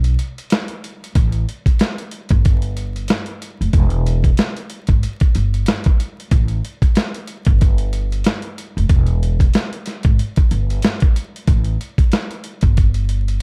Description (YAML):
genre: hip hop, boom-bap hip-hop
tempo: 93 BPM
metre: 4/4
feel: swing 59% on 16ths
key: unclear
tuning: A4 = 440 Hz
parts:
  - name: upright bass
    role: bass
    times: 0.0-13.4 s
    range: E1 to B1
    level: -21 LUFS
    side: equal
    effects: none
  - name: dusty soul sampler-style drum kit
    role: drums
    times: 0.0-13.4 s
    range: hi-hat, kick drum, snare drum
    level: -18 LUFS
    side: equal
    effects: none
room: little or no reverb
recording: dark, warm production, vinyl crackle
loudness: -18 LUFS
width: mono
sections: 0.0-1.2 A section; 1.2-13.4 B section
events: break 0.0-1.2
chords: none